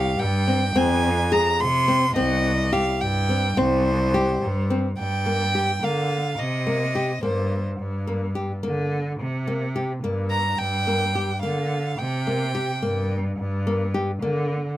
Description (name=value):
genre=contemporary instrumental, chamber music in an uneven meter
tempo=214 BPM (eighths)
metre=5/8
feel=straight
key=C minor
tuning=A4 = 439 Hz
part: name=warm violin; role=melody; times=0.0-7.6, 10.3-13.1 s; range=C5 to C6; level=-25 LUFS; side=right 1 dB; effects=none
part: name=nylon-string guitar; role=arpeggios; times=0.0-14.5 s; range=Bb3 to Ab4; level=-25 LUFS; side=left 2 dB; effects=none
part: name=clear cello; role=bass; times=0.0-14.7 s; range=C2 to D3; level=-24 LUFS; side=equal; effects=none
room=little or no reverb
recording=close, detailed microphones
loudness=-21 LUFS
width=side -14 dB against mid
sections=0.0-5.0 A section; 5.0-14.8 B section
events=none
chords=0.0 C5; 0.8 Fm; 2.2 C5; 5.0 Gm7; 6.4 Cm7; 7.8 Gm; 9.2 C5; 10.6 Gm7; 12.0 C5; 13.4 Gm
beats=0.19 0.47 | 0.76 1.04 1.32 1.60 1.88 | 2.17 2.45 2.73 3.01 3.29 | 3.57 3.86 4.14 4.42 4.70 | 4.98 5.26 5.54 5.82 6.11 | 6.39 6.67 6.95 7.23 7.51 | 7.79 8.07 8.35 8.63 8.91 | 9.19 9.47 9.75 10.03 10.31 | 10.59 10.87 11.15 11.43 11.71 | 11.99 12.27 12.55 12.83 13.11 | 13.39 13.67 13.95 14.23 14.51